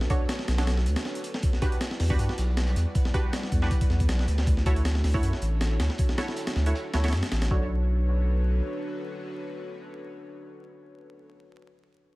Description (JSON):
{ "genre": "drum and bass, jungle", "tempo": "158 BPM", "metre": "4/4", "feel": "swing 54% on 16ths", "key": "B minor", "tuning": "A4 = 440 Hz", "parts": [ { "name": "airy breathy pad", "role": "sustained chords", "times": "0.0-11.3 s", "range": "G3 to F#5", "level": "-36 LUFS", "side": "equal", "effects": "chorus" }, { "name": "filtered dub chord stab", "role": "stabs", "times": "0.0-11.3 s", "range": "D4 to C#5", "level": "-35 LUFS", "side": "right 2 dB", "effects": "chorus, dub echo" }, { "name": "breakbeat sampler-style drum kit", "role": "drums", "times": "0.0-7.6 s", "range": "hi-hat, kick drum, snare drum", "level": "-27 LUFS", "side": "equal", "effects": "none" }, { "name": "crunchy breakbeat drum kit", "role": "drums", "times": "0.1-7.4 s", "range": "hi-hat, snare drum", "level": "-46 LUFS", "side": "right 2 dB", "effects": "none" }, { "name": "saturated sub bass", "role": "bass", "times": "0.5-8.6 s", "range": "A1 to G2", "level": "-24 LUFS", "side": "equal", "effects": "none" } ], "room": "studio reverb", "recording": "vinyl crackle", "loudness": "-24 LUFS", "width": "side -20 dB against mid", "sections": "0.0-7.5 A section; 7.5-10.5 B section", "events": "drop 0.0-7.5", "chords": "0.0 Bm9; 1.4 Em9; 4.5 Dmaj9; 7.5 Bm9" }